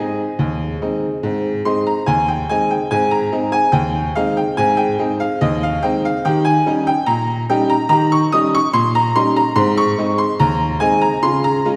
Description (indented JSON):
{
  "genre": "ragtime piano",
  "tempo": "72 BPM",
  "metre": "2/4",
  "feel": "straight",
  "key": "Ab major",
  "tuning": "A4 = 441 Hz",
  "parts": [
    { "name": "tack piano", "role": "solo", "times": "0.0-11.8 s", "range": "Eb2 to Eb6", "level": "-17 LUFS", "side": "equal", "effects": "none" }
  ],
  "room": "wet concert hall reverb, RT60 2.1 s",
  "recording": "recorded in a church or concert hall",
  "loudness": "-17 LUFS",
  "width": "mono",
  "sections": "0.0-2.9 A section; 2.9-11.8 A section",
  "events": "none",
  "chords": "0.0 Ab; 6.3 Eb7; 9.6 Ab; 11.2 Db"
}